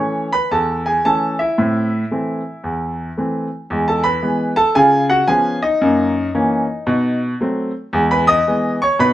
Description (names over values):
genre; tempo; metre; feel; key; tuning
jazz, stride piano; 113 BPM; 4/4; swing 64% on 8ths; E major; A4 = 440 Hz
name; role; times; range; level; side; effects
clear grand piano; solo; 0.0-9.1 s; E2 to D#6; -15 LUFS; equal; none
room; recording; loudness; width
moderate studio reverb, RT60 0.8 s; band playing live in one room; -15 LUFS; side -13 dB against mid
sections
0.0-9.1 A section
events
none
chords
0.0 A; 1.6 Am; 3.7 E; 4.8 C#7; 5.8 F#7; 6.9 B7b9; 7.9 E